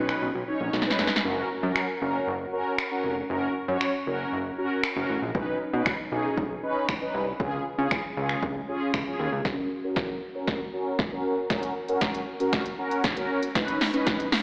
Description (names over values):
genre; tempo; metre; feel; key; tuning
dance-pop; 117 BPM; 4/4; straight; F# major; A4 = 440 Hz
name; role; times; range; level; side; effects
mellow synth brass; accompaniment; 0.0-14.3 s; C#4 to C#5; -30 LUFS; equal; chorus, phaser, low-pass filter
fat analog bass; bass; 0.0-9.4 s; E#1 to C#3; -33 LUFS; equal; sidechain pumping
deep house drum kit; drums; 0.1-14.4 s; finger snaps, hi-hat, kick drum, snare drum; -31 LUFS; equal; none
room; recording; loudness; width
wet lush hall reverb, RT60 2.6 s; played on a big sound system in a bare room, large studio reverb, AM radio sound; -28 LUFS; mono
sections
0.0-9.5 A section; 9.5-14.4 B section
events
drum fill 0.7-1.2, 9.5-14.4; build-up 9.5-14.4; filter sweep on analog polysynth 9.5-14.4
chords
0.0 Badd9; 1.2 F#; 5.3 Badd9; 7.4 C#; 9.5 F#; 13.6 Badd9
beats
0.22 0.73 | 1.25 1.76 2.27 2.79 | 3.30 3.81 4.32 4.84 | 5.35 5.86 6.38 6.89 | 7.40 7.91 8.43 8.94 | 9.45 9.96 10.48 10.99 | 11.50 12.02 12.53 13.04 | 13.55 14.07